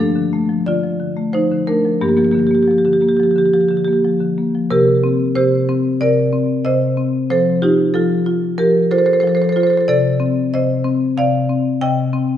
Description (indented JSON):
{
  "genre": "classical, contemporary piece for solo marimba",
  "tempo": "91 BPM",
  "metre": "4/4",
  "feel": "uneven beats",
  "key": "C dorian",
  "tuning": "A4 = 440 Hz",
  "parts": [
    { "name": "marimba with medium hard mallets", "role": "solo", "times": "0.0-12.4 s", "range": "G2 to G5", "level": "-14 LUFS", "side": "equal", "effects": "none" }
  ],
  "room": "wet recital hall reverb, RT60 1.6 s",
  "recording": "nothing above 10.9 kHz",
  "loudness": "-14 LUFS",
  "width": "side -10 dB against mid",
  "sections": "0.0-4.7 A section; 4.7-12.4 B section",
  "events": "none",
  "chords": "0.0 Gm9; 2.0 Gm7; 4.7 Cm7; 7.3 Fadd9; 9.9 Cm6"
}